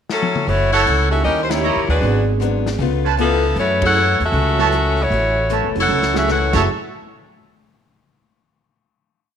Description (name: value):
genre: jazz, big band swing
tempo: 155 BPM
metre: 4/4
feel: swing 66% on 8ths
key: F# minor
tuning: A4 = 440 Hz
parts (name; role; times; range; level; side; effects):
- edgy saxophone section; melody; 0.1-6.7 s; E#3 to F#5; -18 LUFS; left 1 dB; slapback echo
- swinging big-band drum kit; drums; 0.1-6.6 s; crash cymbal, hi-hat, kick drum, ride cymbal, snare drum, toms; -28 LUFS; left 5 dB; none
- picked steel-string acoustic guitar; accompaniment; 0.5-6.7 s; F#2 to E#4; -25 LUFS; left 12 dB; none
- upright bass; bass; 0.5-6.7 s; E#1 to F#2; -20 LUFS; right 1 dB; none
- bright trumpet section; stabs; 0.7-6.6 s; E4 to A#5; -23 LUFS; right 10 dB; none
- warm concert grand piano; accompaniment; 1.1-6.7 s; F#3 to B4; -25 LUFS; right 10 dB; none
room: moderate echo chamber reverb, RT60 1.4 s, small room ambience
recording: 1960s-style stereo with parts hard left and right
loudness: -15 LUFS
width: side -8 dB against mid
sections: 0.0-0.5 pickup bar; 0.5-6.7 A section; 6.7-8.2 final hit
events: drum fill 0.1-0.5, 5.9-6.3; band accent 1.4, 3.8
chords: 0.5 F#m7; 1.2 D#7b9; 2.0 G#m7b5; 2.8 C#7alt; 3.6 F#m7; 6.7 N.C.